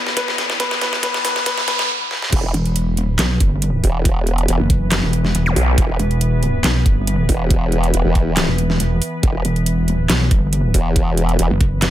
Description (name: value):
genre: heavy wobble dubstep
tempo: 139 BPM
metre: 4/4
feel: half-time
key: E minor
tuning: A4 = 438 Hz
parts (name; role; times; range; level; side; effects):
- dark concert grand piano; melody; 0.0-1.9 s; B3 to B4; -24 LUFS; left 3 dB; ping-pong delay
- evolving wavetable pad; sustained chords; 0.0-11.9 s; C3 to B4; -25 LUFS; left 1 dB; chorus, built-in reverb, sidechain pumping
- riser and zap; sound effects; 0.0-1.9, 5.5-5.6 s; none; -23 LUFS; equal; none
- dubstep drum kit; drums; 0.1-11.9 s; crash cymbal, handclaps, hi-hat, snare drum; -21 LUFS; equal; high-pass filter on snare, high-pass filter on hats, high-pass filter on cymbals, high-pass filter on room
- electronic kick drum; drums; 0.2-11.7 s; none; -16 LUFS; equal; none
- formant-sweep wobble bass; bass; 2.3-11.5 s; E1 to B1; -17 LUFS; equal; chorus, overdrive
- pulsing pluck wobble bass; bass; 2.5-11.9 s; E1 to B1; -17 LUFS; equal; chorus, overdrive
room: digital ambience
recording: high-pass filter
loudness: -15 LUFS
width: side -13 dB against mid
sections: 0.0-2.3 A section; 2.3-11.9 B section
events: build-up 0.0-2.3; drum fill 0.0-1.9, 2.1; riser 0.0-1.9; filter sweep on grand piano 0.0-2.3; stop 1.9-2.3; drop 2.3-11.9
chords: 0.0 Cadd9; 2.3 E5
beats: 0.17 | 0.60 1.03 1.46 1.89 | 2.33 2.76 3.19 3.62 | 4.05 4.48 4.92 5.35 | 5.78 6.21 6.64 7.07 | 7.50 7.94 8.37 8.80 | 9.23 9.66 10.10 10.53 | 10.96 11.39 11.82